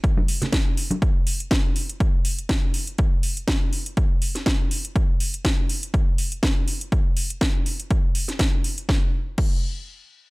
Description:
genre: house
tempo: 122 BPM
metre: 4/4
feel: swing 55% on 16ths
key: none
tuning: none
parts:
  - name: electronic kick drum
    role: drums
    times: 0.0-9.5 s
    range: none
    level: -21 LUFS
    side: equal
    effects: overdrive
  - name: house drum kit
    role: drums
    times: 0.0-9.5 s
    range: crash cymbal, hi-hat, snare drum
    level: -27 LUFS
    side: equal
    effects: overdrive, sidechain pumping on hats, sidechain pumping on cymbals
  - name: tambourine and congas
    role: percussion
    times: 0.0-1.0 s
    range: none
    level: -26 LUFS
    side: right 1 dB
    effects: sidechain pumping on perc, low-pass filter on perc
room: little or no reverb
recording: none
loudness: -20 LUFS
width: side -24 dB against mid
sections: 0.0-8.9 A section; 8.9-10.3 B section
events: none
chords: none

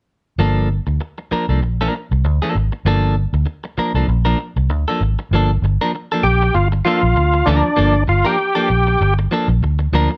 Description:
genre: funk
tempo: 98 BPM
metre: 4/4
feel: swing 56% on 16ths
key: G minor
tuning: A4 = 441 Hz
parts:
  - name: clean electric guitar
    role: accompaniment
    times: 0.4-10.1 s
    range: F3 to Bb4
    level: -22 LUFS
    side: equal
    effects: none
  - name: vintage muted fingered electric bass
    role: bass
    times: 0.4-10.1 s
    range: G1 to D2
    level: -18 LUFS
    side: equal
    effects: none
  - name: overdriven tonewheel organ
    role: melody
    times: 6.2-9.1 s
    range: D4 to G4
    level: -19 LUFS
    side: equal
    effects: chorus vibrato
room: light reverb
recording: none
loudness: -17 LUFS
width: mono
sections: 0.4-5.3 A section; 5.3-10.2 B section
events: none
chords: 0.4 Gm9

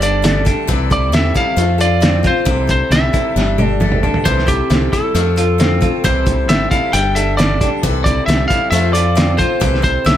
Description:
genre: folk rock and heartland rock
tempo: 134 BPM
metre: 4/4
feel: straight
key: C major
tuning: A4 = 440 Hz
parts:
  - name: lightly driven lead guitar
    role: melody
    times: 0.0-10.2 s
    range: G4 to G5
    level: -18 LUFS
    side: right 1 dB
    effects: analog delay
  - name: picked steel-string acoustic guitar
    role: accompaniment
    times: 0.0-10.2 s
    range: C3 to A4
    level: -22 LUFS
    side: left 8 dB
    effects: none
  - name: electric guitar through a small old amp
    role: riff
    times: 0.0-10.2 s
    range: C3 to F4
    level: -22 LUFS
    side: left 1 dB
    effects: none
  - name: fingered electric bass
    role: bass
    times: 0.0-10.2 s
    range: G1 to F2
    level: -17 LUFS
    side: equal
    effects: none
  - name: cloth-damped thuddy drum kit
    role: drums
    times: 0.0-10.2 s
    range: hi-hat, kick drum, snare drum, toms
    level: -17 LUFS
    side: equal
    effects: none
room: little or no reverb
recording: none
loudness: -12 LUFS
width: side -11 dB against mid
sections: 0.0-10.2 A section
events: drum fill 3.4-4.2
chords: 0.0 Gsus2; 0.7 C6; 1.6 F; 2.5 C6; 3.4 Gsus2; 4.2 C6; 5.1 F; 6.0 C6; 6.9 Gsus2; 7.8 C6; 8.7 F; 9.6 C6

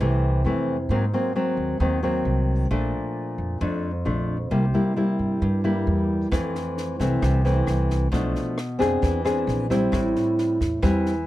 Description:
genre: bossa nova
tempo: 133 BPM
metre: 4/4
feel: straight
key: F major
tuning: A4 = 440 Hz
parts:
  - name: nylon-string guitar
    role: accompaniment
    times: 0.0-11.3 s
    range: F2 to Ab4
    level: -23 LUFS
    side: left 1 dB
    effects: none
  - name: upright bass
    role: bass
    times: 0.0-11.2 s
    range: A1 to Ab2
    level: -24 LUFS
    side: right 1 dB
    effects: none
  - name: compact cocktail drum kit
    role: drums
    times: 6.3-11.1 s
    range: kick drum, rim click, snare drum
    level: -30 LUFS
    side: equal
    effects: none
room: small room ambience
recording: dry, close 1970s-style studio recording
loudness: -21 LUFS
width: side -15 dB against mid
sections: 0.0-11.3 A section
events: none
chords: 0.0 Fmaj7; 0.9 Ab9; 2.7 Bbmaj7; 4.5 C7; 6.3 Fmaj7; 8.1 Bm7b5; 9.0 E7b13; 9.9 Am7

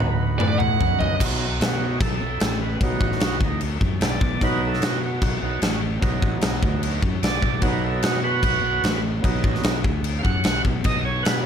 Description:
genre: blues rock power trio and southern rock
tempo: 149 BPM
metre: 4/4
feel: straight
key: B major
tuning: A4 = 440 Hz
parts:
  - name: overdriven tonewheel organ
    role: sustained chords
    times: 0.0-11.5 s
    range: F#3 to F#5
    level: -26 LUFS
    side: right 4 dB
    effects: slow rotary speaker
  - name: fuzz fingered electric bass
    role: bass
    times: 0.0-11.5 s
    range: A1 to B2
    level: -26 LUFS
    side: equal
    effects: overdrive
  - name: bluesy overdriven lead guitar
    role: melody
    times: 0.4-1.2 s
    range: D5 to F#5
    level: -27 LUFS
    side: right 4 dB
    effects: distortion, tape echo
  - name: huge arena drum kit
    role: drums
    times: 0.4-11.3 s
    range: crash cymbal, kick drum, snare drum, toms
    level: -22 LUFS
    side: left 1 dB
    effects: none
room: light reverb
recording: none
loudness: -20 LUFS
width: side -8 dB against mid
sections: 0.0-1.2 A section; 1.2-11.5 A section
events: drum fill 0.0-1.2; lead electric guitar solo 0.0-1.2; tonewheel organ solo 1.2-11.5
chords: 0.0 B

